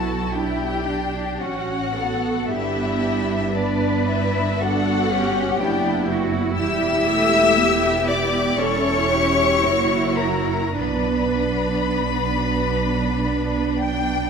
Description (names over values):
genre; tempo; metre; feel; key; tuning
classical, slow romantic movement for string orchestra; 49-62 BPM; 4/4; rubato; B minor; A4 = 440 Hz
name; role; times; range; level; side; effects
rich studio violin section; melody; 0.0-14.3 s; D5 to E6; -25 LUFS; left 6 dB; none
rich chamber violin section; second line; 0.0-14.3 s; D4 to G5; -25 LUFS; left 3 dB; none
rich symphonic viola section; accompaniment; 0.0-14.3 s; G3 to E4; -24 LUFS; right 3 dB; none
rich symphonic cello section; bass; 0.0-14.3 s; D4 to B4; -28 LUFS; right 3 dB; none
rich symphonic double bass section; bass; 0.0-14.3 s; E1 to B1; -26 LUFS; right 3 dB; none
room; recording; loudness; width
wet concert hall reverb, RT60 2.4 s; none; -18 LUFS; side -6 dB against mid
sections
0.0-14.3 A section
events
none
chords
0.0 Bm; 2.5 G; 6.6 Em; 8.6 C#dim/E; 9.6 F#7; 10.8 Bm